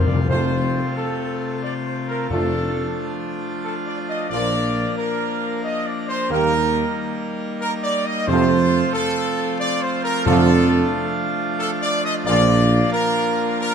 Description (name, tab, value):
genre	classical, ceremonial fanfare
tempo	90 BPM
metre	3/4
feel	straight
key	F mixolydian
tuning	A4 = 440 Hz
part	mellow trumpet section	melody	0.0-13.7 s	A4 to Eb5	-23 LUFS	equal	none
part	mellow French horn section	sustained chords	0.0-12.5 s	A3 to Bb4	-30 LUFS	left 6 dB	none
part	pipe organ, full organ	sustained chords	0.0-13.7 s	C3 to Bb4	-24 LUFS	left 1 dB	none
part	timpani	percussion	0.0-3.3, 8.3-11.2 s	F2	-24 LUFS	left 2 dB	none
part	mellow trombone section	sustained chords	0.3-12.5 s	Bb2 to Bb3	-27 LUFS	right 5 dB	none
part	dark tuba	bass	0.3-12.8 s	F1 to F2	-21 LUFS	right 4 dB	none
room	moderate concert hall reverb, RT60 2.1 s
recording	none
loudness	-18 LUFS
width	side -7 dB against mid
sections	0.3-13.7 A section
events	timpani fill 0.0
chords	0.3 F; 2.3 Dm/F; 4.3 Bb; 6.3 Eb; 8.3 F; 10.3 Dm/F; 12.3 Bb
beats	| 0.28 0.96 1.63 | 2.31 2.98 3.65 | 4.30 4.97 5.64 | 6.30 6.95 7.62 | 8.28 8.94 9.60 | 10.26 10.93 11.60 | 12.26 12.93 13.60